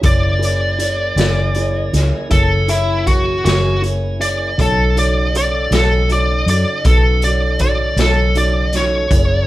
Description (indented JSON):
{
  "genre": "slow blues",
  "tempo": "53 BPM (dotted quarters)",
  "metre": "12/8",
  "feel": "straight",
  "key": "B mixolydian",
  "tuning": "A4 = 441 Hz",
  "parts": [
    { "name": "dark baby grand piano", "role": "accompaniment", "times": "0.0-9.4 s", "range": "D#4 to C#5", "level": "-24 LUFS", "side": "right 2 dB", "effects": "none" },
    { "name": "tonewheel organ", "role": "sustained chords", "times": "0.0-9.5 s", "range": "C#3 to G#5", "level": "-30 LUFS", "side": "equal", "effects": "slow rotary speaker, overdrive" },
    { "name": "vintage muted fingered electric bass", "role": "bass", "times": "0.0-9.5 s", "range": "F#1 to F#2", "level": "-17 LUFS", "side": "equal", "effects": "none" },
    { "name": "raw garage drum kit", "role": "drums", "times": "0.0-9.3 s", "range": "hi-hat, kick drum, snare drum", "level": "-19 LUFS", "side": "equal", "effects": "none" },
    { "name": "smooth overdriven lead guitar", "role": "melody", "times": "0.1-9.5 s", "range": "E4 to D5", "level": "-18 LUFS", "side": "equal", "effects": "none" }
  ],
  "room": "moderate studio reverb, RT60 0.7 s",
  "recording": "band playing live in one room",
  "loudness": "-13 LUFS",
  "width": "side -16 dB against mid",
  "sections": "0.0-9.5 A section",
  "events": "lead electric guitar solo 0.0-9.5",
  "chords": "0.0 F#9; 4.6 B9",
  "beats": "| 0.04 1.17 2.31 3.44 | 4.58 5.71 6.85 7.98 | 9.11"
}